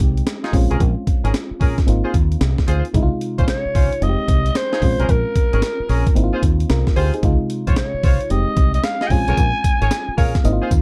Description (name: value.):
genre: R&B, new jack swing.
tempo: 112 BPM.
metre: 4/4.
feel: swing 65% on 16ths.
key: unclear.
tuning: A4 = 440 Hz.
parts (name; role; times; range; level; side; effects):
FM electric piano; accompaniment; 0.0-10.8 s; C3 to F5; -27 LUFS; equal; none.
deep dub fingered electric bass; bass; 0.0-10.8 s; F1 to Eb2; -21 LUFS; equal; none.
breakbeat sampler-style drum kit; drums; 0.0-10.8 s; hi-hat, kick drum, snare drum, tambourine; -21 LUFS; equal; none.
warm horn section; stabs; 0.4-10.7 s; Db4 to Eb5; -28 LUFS; equal; none.
growling alto saxophone; melody; 3.5-10.2 s; Bb4 to Ab5; -24 LUFS; equal; slapback echo.
room: little or no reverb.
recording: dry, close 1970s-style studio recording.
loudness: -18 LUFS.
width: mono.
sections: 0.0-2.9 A section; 2.9-10.8 B section.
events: FM electric piano fill 9.9-10.8.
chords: 0.0 Fm7; 0.5 Bbm7; 1.9 Ab6; 2.9 Dbmaj7; 4.0 Fm7; 4.8 Bbm7; 6.2 Ab6; 7.2 Dbmaj7; 8.3 Fm7; 9.1 Bbm7.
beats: 0.27 | 0.80 1.34 1.87 2.41 | 2.94 3.48 4.02 4.55 | 5.09 5.62 6.16 6.70 | 7.23 7.77 8.30 8.84 | 9.37 9.91 10.45.